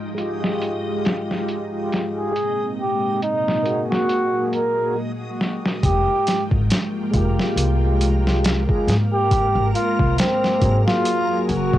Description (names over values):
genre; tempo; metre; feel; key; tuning
trip hop; 69 BPM; 4/4; swing 57% on 16ths; F minor; A4 = 440 Hz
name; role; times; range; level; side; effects
string machine, cellos; sustained chords; 0.0-11.8 s; Gb3 to Bb5; -28 LUFS; equal; ensemble chorus
backwards swelling texture; texture; 0.0-11.8 s; Bb3 to Eb5; -33 LUFS; equal; built-in reverb
mellow tonewheel organ; accompaniment; 0.1-11.8 s; Gb3 to Ab4; -25 LUFS; equal; chorus vibrato, slow rotary speaker, tremolo
boom bap sampler-style drum kit; drums; 0.2-11.8 s; hi-hat, kick drum, snare drum; -22 LUFS; equal; overdrive, low-pass filter on hats, cassette tape, low-pass filter on snare, low-pass filter on kick
trumpet with bucket mute; melody; 2.2-11.8 s; C4 to Bb4; -22 LUFS; equal; cassette tape, tape echo
upright bass; bass; 5.8-11.8 s; F1 to Ab2; -20 LUFS; equal; none
room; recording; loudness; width
little or no reverb; home recording on cassette, low-pass filter; -18 LUFS; side -13 dB against mid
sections
0.0-5.8 A section; 5.8-11.8 B section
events
break 5.0-5.8; drum fill 5.4-5.8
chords
0.0 Fmadd9; 2.4 Abadd9; 4.1 Gbadd9; 5.8 Fmadd9; 9.3 Abadd9; 11.1 Gbadd9